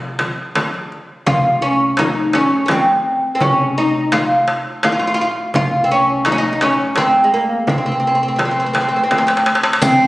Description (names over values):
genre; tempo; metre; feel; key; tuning
Arabic maqam ensemble; 84 BPM; 3/4; straight; C maqam kurd; A4 = 440 Hz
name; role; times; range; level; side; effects
oud; melody; 0.0-10.1 s; Ab3 to F4; -14 LUFS; equal; none
upright bass; bass; 0.0-10.1 s; C2 to C3; -27 LUFS; equal; none
darbuka; percussion; 0.2-10.0 s; none; -20 LUFS; equal; none
frame drum; percussion; 0.2-10.0 s; none; -24 LUFS; equal; none
rich cello; second line; 9.8-10.1 s; C4; -14 LUFS; equal; none
riq; percussion; 9.8-10.0 s; none; -24 LUFS; equal; none
room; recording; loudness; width
wet scoring stage reverb, RT60 1.5 s; recorded on a phone in the room, studio reverb; -14 LUFS; side -18 dB against mid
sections
0.0-9.8 A section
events
drum fill 9.1-9.8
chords
none